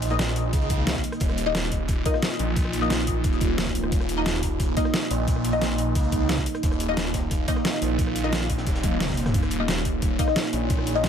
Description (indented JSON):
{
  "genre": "dark technical drum and bass",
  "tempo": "177 BPM",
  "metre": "4/4",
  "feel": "straight",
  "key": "unclear",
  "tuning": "A4 = 440 Hz",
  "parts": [
    { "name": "deep dark ambient pad", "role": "sustained chords", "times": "0.0-11.1 s", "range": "Bb3 to F5", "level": "-28 LUFS", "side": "right 2 dB", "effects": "chorus, built-in reverb, sidechain pumping" },
    { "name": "filtered dub chord stab", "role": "stabs", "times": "0.0-11.0 s", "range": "Bb3 to Eb5", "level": "-30 LUFS", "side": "left 5 dB", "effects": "phaser, wide subtle chorus, dub echo" },
    { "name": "phased detuned saw bass", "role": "bass", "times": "0.0-11.1 s", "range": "Eb1 to Db2", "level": "-27 LUFS", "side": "equal", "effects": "phaser, tube saturation, sidechain pumping" },
    { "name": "crunchy breakbeat drum kit", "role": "drums", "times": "0.0-11.1 s", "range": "hi-hat, snare drum", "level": "-41 LUFS", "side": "equal", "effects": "none" },
    { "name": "dubstep drum kit", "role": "drums", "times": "0.0-11.1 s", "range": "hi-hat, rim click, snare drum, toms", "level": "-28 LUFS", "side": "equal", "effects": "overdrive" },
    { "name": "electronic kick drum", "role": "drums", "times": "0.5-10.8 s", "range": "none", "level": "-26 LUFS", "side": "equal", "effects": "overdrive" },
    { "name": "swell", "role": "sound effects", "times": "8.8-9.3 s", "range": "none", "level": "-42 LUFS", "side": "right 3 dB", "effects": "none" }
  ],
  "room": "light reverb",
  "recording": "none",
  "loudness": "-22 LUFS",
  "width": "side -8 dB against mid",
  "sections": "0.0-11.1 A section",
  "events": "swell 8.8-9.3; drum fill 8.8-9.3",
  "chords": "0.0 Eb5",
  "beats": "0.19 0.53 0.87 | 1.21 1.55 1.89 2.23 | 2.56 2.90 3.24 3.58 | 3.92 4.26 4.60 4.94 | 5.28 5.62 5.95 6.29 | 6.63 6.97 7.31 7.65 | 7.99 8.33 8.67 9.01 | 9.34 9.68 10.02 10.36 | 10.70 11.04"
}